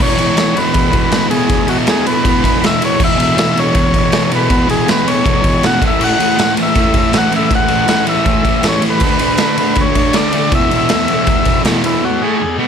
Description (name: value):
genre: garage rock duo or trio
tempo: 160 BPM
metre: 4/4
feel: straight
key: E mixolydian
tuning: A4 = 443 Hz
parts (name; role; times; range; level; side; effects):
- overdriven combo organ; melody; 0.0-12.6 s; E4 to F#5; -17 LUFS; left 2 dB; none
- thick fuzz guitar; riff; 0.0-12.7 s; E2 to D4; -15 LUFS; right 1 dB; distortion
- raw garage drum kit; drums; 0.0-11.9 s; crash cymbal, kick drum, ride cymbal, snare drum; -15 LUFS; equal; none
room: light reverb, small room ambience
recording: none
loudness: -11 LUFS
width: side -7 dB against mid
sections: 0.0-12.0 A section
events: none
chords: 0.0 E; 5.8 A5; 9.0 D5; 10.5 E5; 12.0 E